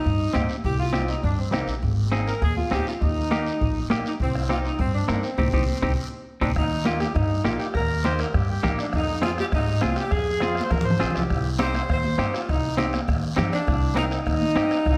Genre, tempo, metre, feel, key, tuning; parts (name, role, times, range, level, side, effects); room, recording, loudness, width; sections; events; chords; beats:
latin, cumbia; 203 BPM; 4/4; straight; C minor; A4 = 440 Hz
warm saxophone section; melody; 0.0-15.0 s; Bb3 to C5; -30 LUFS; equal
guiro; percussion; 0.0-15.0 s; -43 LUFS; equal
upright bass; bass; 0.1-15.0 s; Ab1 to Ab2; -29 LUFS; equal
bombo; percussion; 0.1-15.0 s; -30 LUFS; equal
semi-hollow electric guitar; accompaniment; 0.3-14.8 s; Bb3 to Bb4; -31 LUFS; equal
congas; percussion; 0.3-15.0 s; -33 LUFS; equal
accordion; second line; 8.0-11.5 s; F4 to C5; -33 LUFS; equal
moderate large studio reverb, RT60 1.3 s; -24 LUFS; mono
0.0-6.6 A section; 6.6-15.0 B section
band accent 5.4-6.6; drum fill 10.4-11.3
0.0 Cm; 1.8 Ab; 3.0 Eb; 4.2 Cm; 6.6 Eb; 8.9 Fm; 11.3 Cm
0.05 0.35 | 0.64 0.94 1.24 1.53 | 1.83 2.12 2.42 2.72 | 3.01 3.31 3.60 3.90 | 4.20 4.49 4.79 5.09 | 5.38 5.68 5.97 6.27 | 6.57 6.86 7.16 7.45 | 7.75 8.05 8.34 8.64 | 8.93 9.23 9.53 9.82 | 10.12 10.41 10.71 11.01 | 11.30 11.60 11.89 12.19 | 12.48 12.78 13.08 13.37 | 13.67 13.97 14.26 14.56 | 14.86